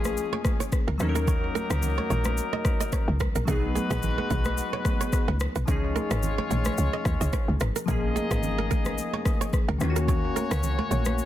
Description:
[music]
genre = afrobeats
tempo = 109 BPM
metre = 4/4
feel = swing 55% on 16ths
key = unclear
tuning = A4 = 440 Hz
[part]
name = clear horn section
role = second line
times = 0.0-11.3 s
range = F3 to Eb5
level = -32 LUFS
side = left 4 dB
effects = none
[part]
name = glassy digital keys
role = accompaniment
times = 0.0-11.3 s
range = Eb3 to Bb4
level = -32 LUFS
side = left 2 dB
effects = chorus
[part]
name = woody log drum bass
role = bass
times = 0.0-11.2 s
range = Ab1 to Eb2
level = -27 LUFS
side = equal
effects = none
[part]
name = afro-pop drum kit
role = drums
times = 0.0-11.3 s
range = kick drum, rim click, shaker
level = -28 LUFS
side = equal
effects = soft clipping on snare
[part]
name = congas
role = percussion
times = 0.0-11.2 s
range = none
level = -35 LUFS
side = right 3 dB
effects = none
[part]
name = kora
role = riff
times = 0.3-11.0 s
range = Ab4 to Eb5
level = -34 LUFS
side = right 8 dB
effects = digital delay
[sound]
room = little or no reverb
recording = dense, heavily limited modern master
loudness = -24 LUFS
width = side -12 dB against mid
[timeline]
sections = 0.0-11.3 A section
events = none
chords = 0.0 Bbm7; 1.0 Ebm7; 3.5 Cb6; 5.7 Dbadd9; 7.9 Bbm7; 9.8 Ebm7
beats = 0.17 0.72 | 1.28 1.83 2.38 2.93 | 3.48 4.03 4.58 5.13 | 5.68 6.23 6.78 7.33 | 7.88 8.43 8.98 9.53 | 10.08 10.63 11.18

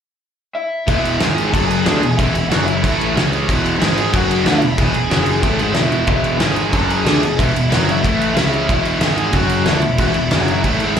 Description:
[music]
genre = punk rock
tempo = 184 BPM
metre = 4/4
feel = straight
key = E major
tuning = A4 = 440 Hz
[part]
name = lead guitar through a small cranked amp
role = melody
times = 0.5-11.0 s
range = E4 to A5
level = -22 LUFS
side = left 2 dB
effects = overdrive, slapback echo
[part]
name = distorted electric guitar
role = riff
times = 0.9-11.0 s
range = E2 to D4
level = -23 LUFS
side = right 10 dB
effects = distortion, slapback echo
[part]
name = fuzz guitar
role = riff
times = 0.9-11.0 s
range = E2 to D4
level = -22 LUFS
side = equal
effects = distortion, slapback echo
[part]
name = overdriven electric guitar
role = riff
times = 0.9-11.0 s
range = E2 to D4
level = -23 LUFS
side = left 8 dB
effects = none
[part]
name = fuzz picked electric bass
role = bass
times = 0.9-11.0 s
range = E1 to D2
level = -23 LUFS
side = equal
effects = overdrive
[part]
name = loose indie drum kit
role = drums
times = 0.9-11.0 s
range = crash cymbal, kick drum, snare drum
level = -18 LUFS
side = equal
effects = none
[sound]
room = light reverb, small room reverb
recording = live gig heard through the venue's PA, club reverb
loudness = -14 LUFS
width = side -8 dB against mid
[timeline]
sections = 0.9-11.0 A section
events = none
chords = 0.0 N.C.; 0.9 E5; 1.2 G#5; 1.5 F#5; 1.9 E; 2.5 F#5; 2.8 A5; 3.2 C#5; 3.5 E5; 3.8 G#5; 4.1 F#5; 4.5 E; 5.1 F#5; 5.4 E; 6.4 G#5; 6.7 F#5; 7.1 E; 7.7 F#5; 8.0 A5; 8.4 C#5; 8.7 E5; 9.0 G#5; 9.3 F#5; 9.7 E5; 10.3 F#5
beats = 0.23 0.55 | 0.88 1.21 1.53 1.86 | 2.18 2.51 2.83 3.16 | 3.48 3.81 4.13 4.46 | 4.79 5.11 5.44 5.76 | 6.09 6.41 6.74 7.06 | 7.39 7.72 8.04 8.37 | 8.69 9.02 9.35 9.67 | 10.00 10.32 10.65 10.98

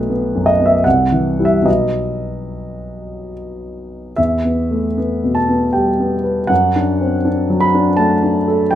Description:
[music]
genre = classical, romantic nocturne for solo piano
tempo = 69-83 BPM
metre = 3/4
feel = rubato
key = unclear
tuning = A4 = 439 Hz
[part]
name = warm grand piano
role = solo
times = 0.0-8.8 s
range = B1 to B5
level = -14 LUFS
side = equal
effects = none
[sound]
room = moderate large studio reverb, RT60 1.2 s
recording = close, detailed microphones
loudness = -13 LUFS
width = side -11 dB against mid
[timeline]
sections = 0.0-8.8 A section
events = none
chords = 0.0 B5; 0.8 C; 1.7 B; 4.2 Em; 6.5 D/F#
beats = 0.09 0.85 | 1.67 2.52 3.34 | 4.18 4.98 5.74 | 6.50 7.26 7.98 | 8.72

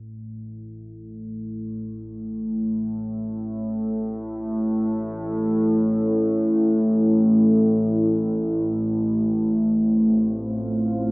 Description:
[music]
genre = dark ambient drone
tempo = free time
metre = none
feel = none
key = unclear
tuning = A4 = 440 Hz
[part]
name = analog drone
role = drone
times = 0.2-11.1 s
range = A1 to A2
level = -20 LUFS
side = equal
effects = chorus
[part]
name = deep dark ambient pad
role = sustained chords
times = 10.1-11.1 s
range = A3 to F5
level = -28 LUFS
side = right 1 dB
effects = chorus, built-in reverb
[sound]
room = wet cathedral reverb, RT60 5.4 s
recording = in a vast, echoing space, small speaker sound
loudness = -19 LUFS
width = side -26 dB against mid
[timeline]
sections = 0.0-11.1 A section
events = none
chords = 0.0 N.C.; 9.2 F/A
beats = free time

